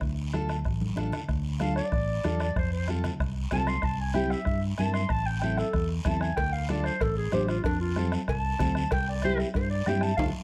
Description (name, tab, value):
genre	latin, cumbia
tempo	189 BPM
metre	4/4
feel	straight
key	D minor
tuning	A4 = 440 Hz
part	fingered electric bass	bass	0.0-10.3 s	A1 to G2	-32 LUFS	equal	none
part	bombo	percussion	0.0-10.3 s	none	-35 LUFS	equal	none
part	congas	percussion	0.0-10.3 s	none	-38 LUFS	equal	none
part	guiro	percussion	0.0-10.3 s	none	-48 LUFS	equal	none
part	nylon-string guitar	accompaniment	0.3-10.3 s	C4 to C5	-35 LUFS	equal	none
part	mellow clarinet	melody	1.6-10.3 s	D4 to C6	-34 LUFS	equal	none
part	cowbell and timbales	percussion	6.4-10.3 s	none	-38 LUFS	equal	none
room	light reverb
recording	dark, warm production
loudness	-28 LUFS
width	mono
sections	0.0-1.3 A section; 1.3-10.4 B section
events	drum fill 0.8-1.3; clarinet solo 1.3-10.4; band accent 10.2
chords	0.0 Dm; 2.6 F; 3.8 C; 5.1 Am; 6.4 Dm; 7.7 F; 8.9 C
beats	| 0.01 0.33 0.65 0.97 | 1.29 1.61 1.92 2.24 | 2.56 2.88 3.20 3.51 | 3.83 4.15 4.47 4.79 | 5.10 5.42 5.74 6.06 | 6.38 6.70 7.01 7.33 | 7.65 7.97 8.29 8.60 | 8.92 9.24 9.56 9.88 | 10.19